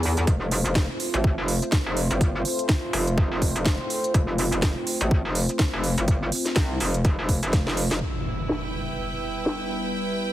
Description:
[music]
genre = bass house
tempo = 124 BPM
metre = 4/4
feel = swing 58% on 16ths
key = unclear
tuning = A4 = 439 Hz
[part]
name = sweeping resonant pad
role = sustained chords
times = 0.0-10.3 s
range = G3 to C5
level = -30 LUFS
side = equal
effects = chorus, phaser, sidechain pumping
[part]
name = metallic wobble bass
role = bass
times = 0.0-8.0 s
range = F1 to E2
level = -24 LUFS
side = equal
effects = distortion, chorus, overdrive, sidechain pumping
[part]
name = garage drum kit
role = drums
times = 0.0-9.6 s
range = crash cymbal, finger snaps, hi-hat, snare drum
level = -28 LUFS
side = right 1 dB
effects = low-pass filter on hats, low-pass filter on snare, low-pass filter on cymbals, low-pass filter on room
[part]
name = electronic kick drum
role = drums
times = 0.3-7.6 s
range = none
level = -24 LUFS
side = equal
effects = none
[part]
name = impact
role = sound effects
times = 8.0-9.9 s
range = none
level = -32 LUFS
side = equal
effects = none
[part]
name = clear studio string section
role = texture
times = 8.0-10.3 s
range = E4 to G5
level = -30 LUFS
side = right 2 dB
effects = sidechain pumping
[sound]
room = light reverb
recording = heavily compressed radio sound, multiband compression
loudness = -22 LUFS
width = side -13 dB against mid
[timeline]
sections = 0.0-8.0 A section; 8.0-10.3 B section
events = drum fill 7.5-8.0; impact 8.0-9.9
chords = 0.3 F; 8.0 Em

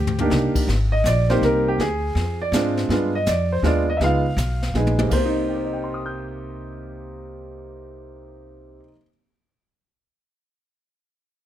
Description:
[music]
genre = jazz piano trio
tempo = 162 BPM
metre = 3/4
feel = swing 65% on 8ths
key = C minor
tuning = A4 = 440 Hz
[part]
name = warm baby grand piano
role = melody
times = 0.0-9.1 s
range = C3 to G6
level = -22 LUFS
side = right 1 dB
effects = none
[part]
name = upright bass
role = bass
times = 0.0-8.8 s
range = Ab1 to Ab2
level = -24 LUFS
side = equal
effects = none
[part]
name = jazz brush drum kit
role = drums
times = 0.1-5.5 s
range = brushed snare drum, crash cymbal, hi-hat, kick drum, snare drum, toms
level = -28 LUFS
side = left 2 dB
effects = none
[sound]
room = light reverb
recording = none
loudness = -18 LUFS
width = side -12 dB against mid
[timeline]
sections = 0.7-5.1 A section; 5.1-7.3 B section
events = drum fill 0.0-0.3, 4.7-5.1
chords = 0.0 Cm9; 0.7 Abmaj9; 1.8 Dm7b5; 2.9 G7b9; 4.0 Db9; 5.1 Cm7

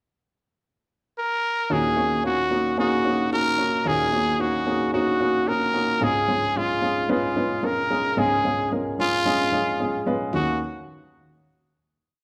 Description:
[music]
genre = piano-driven pop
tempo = 111 BPM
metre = 4/4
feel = straight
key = Eb minor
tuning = A4 = 439 Hz
[part]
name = growling trumpet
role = melody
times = 1.2-10.6 s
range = F4 to Bb4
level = -25 LUFS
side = equal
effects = none
[part]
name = warm upright piano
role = accompaniment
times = 1.7-10.6 s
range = Db2 to Cb5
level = -26 LUFS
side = equal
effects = none
[sound]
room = wet large studio reverb, RT60 1.4 s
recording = band playing live in one room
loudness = -23 LUFS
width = mono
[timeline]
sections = 0.0-1.7 pickup bar; 1.7-10.3 verse; 10.3-12.2 final chord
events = none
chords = 0.0 N.C.; 1.7 Ebm7; 6.0 Db; 10.3 Ebm7

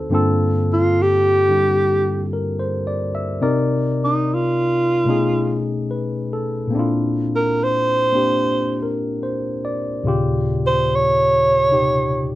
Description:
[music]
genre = jazz ballad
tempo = 72 BPM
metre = 4/4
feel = swing 69% on 8ths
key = unclear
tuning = A4 = 437 Hz
[part]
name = barky tine electric piano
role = accompaniment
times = 0.0-12.4 s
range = D2 to E5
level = -20 LUFS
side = left 1 dB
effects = none
[part]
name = mellow alto saxophone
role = melody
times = 0.7-12.3 s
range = Eb4 to Db5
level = -17 LUFS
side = right 1 dB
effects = none
[sound]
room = light reverb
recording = none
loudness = -16 LUFS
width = side -15 dB against mid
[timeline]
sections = 0.0-12.4 A section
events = alto saxophone solo 0.0-12.4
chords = 0.1 Gm11; 3.4 Cm7; 5.1 B13; 6.7 Bbadd9; 10.0 Eb9

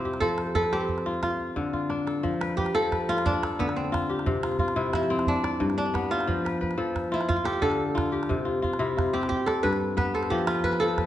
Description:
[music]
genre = west african traditional, West African string and xylophone music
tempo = 119 BPM (dotted quarters)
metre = 12/8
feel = straight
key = F lydian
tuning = A4 = 436 Hz
[part]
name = kora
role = melody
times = 0.0-11.1 s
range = B3 to B4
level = -28 LUFS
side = right 1 dB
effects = slapback echo
[part]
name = kora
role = arpeggios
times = 0.0-11.1 s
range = G2 to D5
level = -27 LUFS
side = left 2 dB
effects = none
[part]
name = calabash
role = percussion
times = 0.1-11.1 s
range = none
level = -32 LUFS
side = right 2 dB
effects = none
[sound]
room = wet recital hall reverb, RT60 1.8 s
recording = nothing above 10.6 kHz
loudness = -24 LUFS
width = side -12 dB against mid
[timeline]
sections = 0.0-2.2 A section; 2.2-11.1 B section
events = drum fill 1.7-2.2; kora solo 2.2-11.1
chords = 0.2 F; 1.2 Dm; 2.2 F; 3.3 Dm; 4.3 C; 5.3 G; 6.3 F; 7.3 Dm; 8.3 C; 9.3 G; 10.3 F

